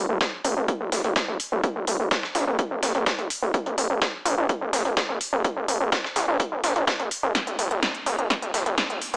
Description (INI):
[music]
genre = melodic techno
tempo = 126 BPM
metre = 4/4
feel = straight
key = unclear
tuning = A4 = 440 Hz
[part]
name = gritty driven synth bass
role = bass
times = 0.0-9.2 s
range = Eb1 to Db2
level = -23 LUFS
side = equal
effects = distortion, sidechain pumping, high-pass filter
[part]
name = dusty soul sampler-style drum kit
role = drums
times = 0.2-9.1 s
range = hi-hat, snare drum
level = -28 LUFS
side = equal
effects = high-pass filter on hats, studio reverb, high-pass filter on snare
[part]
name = electronic kick drum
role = drums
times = 0.2-8.9 s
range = none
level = -26 LUFS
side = equal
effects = high-pass filter on kick, studio reverb
[part]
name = techno drum kit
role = drums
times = 0.4-9.2 s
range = hi-hat, snare drum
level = -28 LUFS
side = equal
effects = high-pass filter on hats, studio reverb, high-pass filter on snare
[sound]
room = little or no reverb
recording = high-pass filter, small speaker sound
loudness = -22 LUFS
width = side -29 dB against mid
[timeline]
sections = 0.0-9.2 A section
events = build-up 0.0-9.2; drum fill 7.4-9.2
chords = none